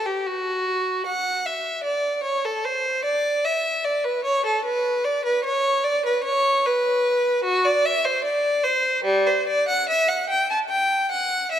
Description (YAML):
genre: classical, baroque-style suite movement for unaccompanied violin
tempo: 75 BPM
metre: 4/4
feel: rubato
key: unclear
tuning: A4 = 437 Hz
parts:
  - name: clear violin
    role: solo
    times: 0.0-11.6 s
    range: G3 to A5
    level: -20 LUFS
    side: equal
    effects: none
room: moderate concert hall reverb, RT60 2.4 s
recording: none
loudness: -20 LUFS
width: side -10 dB against mid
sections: 0.0-11.6 A section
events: none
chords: none